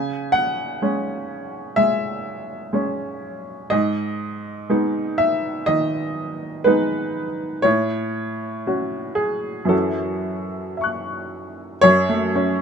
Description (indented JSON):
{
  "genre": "neoclassical minimalist piano",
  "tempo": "56-63 BPM",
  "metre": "4/4",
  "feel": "rubato",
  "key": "F# dorian",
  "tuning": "A4 = 442 Hz",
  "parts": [
    { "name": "clear upright piano", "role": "solo", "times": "0.0-12.6 s", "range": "F#2 to F#6", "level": "-20 LUFS", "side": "equal", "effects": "none" }
  ],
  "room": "light reverb",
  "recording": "minimal, uncompressed stereo recording",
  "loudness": "-19 LUFS",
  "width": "side -6 dB against mid",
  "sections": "0.0-11.8 A section",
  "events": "none",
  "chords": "0.0 C#m; 3.7 G#m; 7.7 A6; 9.7 F#m7; 11.8 F#m"
}